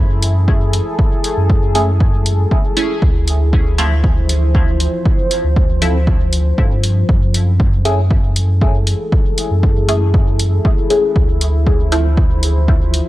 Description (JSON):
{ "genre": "dub techno", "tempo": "118 BPM", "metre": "4/4", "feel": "straight", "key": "unclear", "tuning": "A4 = 440 Hz", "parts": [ { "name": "deep dark ambient pad", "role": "sustained chords", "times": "0.0-13.1 s", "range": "F3 to C5", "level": "-22 LUFS", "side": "left 1 dB", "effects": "chorus, built-in reverb, sidechain pumping" }, { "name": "warm sub bass", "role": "bass", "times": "0.0-13.0 s", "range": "D2 to G2", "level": "-15 LUFS", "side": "equal", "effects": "sidechain pumping" }, { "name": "electronic hi-hat", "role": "drums", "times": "0.2-13.0 s", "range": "none", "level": "-22 LUFS", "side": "equal", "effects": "none" }, { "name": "electronic kick drum", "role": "drums", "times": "0.5-12.8 s", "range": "none", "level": "-15 LUFS", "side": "equal", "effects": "none" }, { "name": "filtered dub chord stab", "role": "stabs", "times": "1.8-12.1 s", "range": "F3 to G#4", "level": "-21 LUFS", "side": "equal", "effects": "phaser, sidechain pumping, dub echo" } ], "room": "little or no reverb", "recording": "dry, gritty hardware recording", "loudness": "-12 LUFS", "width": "side -16 dB against mid", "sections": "0.0-13.1 A section", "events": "none", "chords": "0.0 F#m9; 3.0 Dm9; 7.1 F#m9; 11.2 Dm9" }